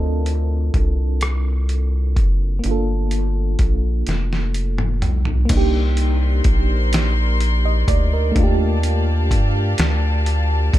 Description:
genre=slow six-eight R&B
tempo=42 BPM (dotted quarters)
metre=6/8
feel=straight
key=unclear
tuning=A4 = 440 Hz
part: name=FM electric piano with tremolo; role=accompaniment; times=0.0-10.8 s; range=A3 to Eb5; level=-25 LUFS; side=right 2 dB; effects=analog delay
part: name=rubbery square bass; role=bass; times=0.0-10.8 s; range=F1 to G2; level=-18 LUFS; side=equal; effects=none
part: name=dusty soul sampler-style drum kit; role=drums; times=0.3-10.8 s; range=crash cymbal, hi-hat, kick drum, rim click, snare drum, toms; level=-20 LUFS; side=equal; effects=none
part: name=warm studio string section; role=sustained chords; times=5.5-10.8 s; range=G4 to C6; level=-26 LUFS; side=left 2 dB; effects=none
room=little or no reverb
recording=echo-heavy mix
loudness=-16 LUFS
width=side -14 dB against mid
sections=0.0-5.5 A section; 5.5-10.8 B section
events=drum fill 4.1-5.5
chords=0.0 Dm7; 2.6 Gm9; 5.5 Cm9; 8.4 Ebmaj9#11

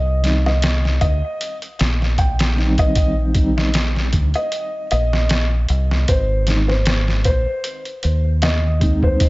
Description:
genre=trip hop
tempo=77 BPM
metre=4/4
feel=swing 55% on 16ths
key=unclear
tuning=A4 = 440 Hz
part: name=felt-muted upright piano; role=melody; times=0.0-9.3 s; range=C5 to G5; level=-24 LUFS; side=equal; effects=vintage 12-bit sampler grit, tape echo
part: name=deep dub fingered electric bass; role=bass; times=0.0-9.3 s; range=Ab1 to Eb2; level=-18 LUFS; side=equal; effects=none
part: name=reed electric piano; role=accompaniment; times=0.2-9.3 s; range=Eb3 to Eb4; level=-23 LUFS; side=equal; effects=fast tremolo, tape echo
part: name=trip hop sampler-style drum kit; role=drums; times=0.2-9.3 s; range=hi-hat, kick drum, snare drum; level=-20 LUFS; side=equal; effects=studio reverb
room=light reverb, digital ambience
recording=echo-heavy mix, nothing above 7.8 kHz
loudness=-16 LUFS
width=side -21 dB against mid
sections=0.0-9.3 A section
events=none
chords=0.0 Cm; 6.1 Ab

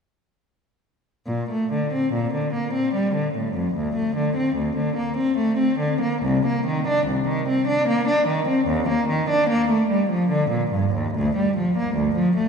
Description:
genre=classical, baroque-style suite movement for unaccompanied cello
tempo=74 BPM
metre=3/4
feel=rubato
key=Bb major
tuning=A4 = 445 Hz
part: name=rich cello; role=solo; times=1.3-12.5 s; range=C2 to D4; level=-20 LUFS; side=equal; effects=none
room=wet church reverb, RT60 3.7 s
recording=heard from further back in the room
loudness=-20 LUFS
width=side -6 dB against mid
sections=1.3-12.5 A section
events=none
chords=none

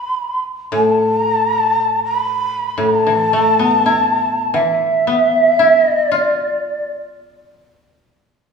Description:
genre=japanese traditional, Japanese chamber music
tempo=free time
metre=none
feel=none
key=unclear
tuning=A4 = 441 Hz
part: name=breathy shakuhachi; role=melody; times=0.0-6.9 s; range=E5 to B5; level=-15 LUFS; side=right 1 dB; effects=none
part: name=koto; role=accompaniment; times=0.7-8.2 s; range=A2 to F4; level=-18 LUFS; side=left 2 dB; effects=none
room=wet recital hall reverb, RT60 1.6 s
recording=small room ambience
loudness=-13 LUFS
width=side -5 dB against mid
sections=0.0-8.5 A section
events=none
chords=none

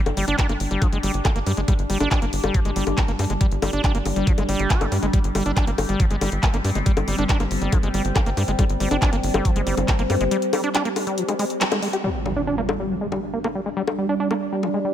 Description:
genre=psychedelic trance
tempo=139 BPM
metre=4/4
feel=straight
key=unclear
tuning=A4 = 436 Hz
part: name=overtone-sweeping drone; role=sustained chords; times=0.0-14.9 s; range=G3 to D4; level=-27 LUFS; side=equal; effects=chorus, built-in reverb, sidechain pumping
part: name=tight sequencer bass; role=bass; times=0.1-10.3 s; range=G1 to G2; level=-24 LUFS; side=equal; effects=none
part: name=drum and bass drum kit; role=drums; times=0.1-14.7 s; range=bongos, handclaps, hi-hat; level=-26 LUFS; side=left 3 dB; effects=none
part: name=overdriven acid bass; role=riff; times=0.2-14.9 s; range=F3 to G4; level=-26 LUFS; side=right 1 dB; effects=auto-pan, sidechain pumping, dub echo
part: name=electronic kick drum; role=drums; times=0.4-10.0 s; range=none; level=-20 LUFS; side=equal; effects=none
part: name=impact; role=sound effects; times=12.0-13.8 s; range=none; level=-32 LUFS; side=equal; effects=none
room=light reverb, digital ambience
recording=none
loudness=-19 LUFS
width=side -10 dB against mid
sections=0.0-12.0 A section; 12.0-14.9 B section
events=band accent 11.6; impact 12.0-13.8; filter sweep on synth drone 12.0-14.9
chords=0.0 G5

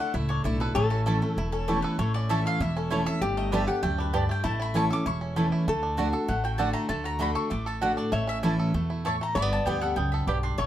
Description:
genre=bluegrass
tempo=196 BPM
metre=4/4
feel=straight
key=A mixolydian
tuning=A4 = 442 Hz
part: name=bluegrass banjo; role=melody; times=0.0-10.7 s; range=A3 to A4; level=-35 LUFS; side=right 3 dB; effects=none
part: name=mandolin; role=melody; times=0.0-10.7 s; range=G4 to D6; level=-32 LUFS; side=left 3 dB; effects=none
part: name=lap resonator guitar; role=second line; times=0.0-10.7 s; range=E4 to E5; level=-32 LUFS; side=left 2 dB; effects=none
part: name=picked steel-string acoustic guitar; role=accompaniment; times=0.0-10.7 s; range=E2 to G4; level=-29 LUFS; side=equal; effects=none
part: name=upright bass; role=bass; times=0.1-10.7 s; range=E1 to E2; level=-30 LUFS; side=equal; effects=none
part: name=mandolin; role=stabs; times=1.1-10.4 s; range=A3 to A5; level=-30 LUFS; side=right 3 dB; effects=none
room=light reverb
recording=dark, warm production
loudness=-24 LUFS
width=side -12 dB against mid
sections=0.0-5.7 A section; 5.7-10.7 A section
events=mandolin solo 0.0-10.7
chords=0.0 Dsus2; 0.8 A; 3.2 Gadd9; 4.4 A; 5.7 D; 8.1 A; 9.4 G

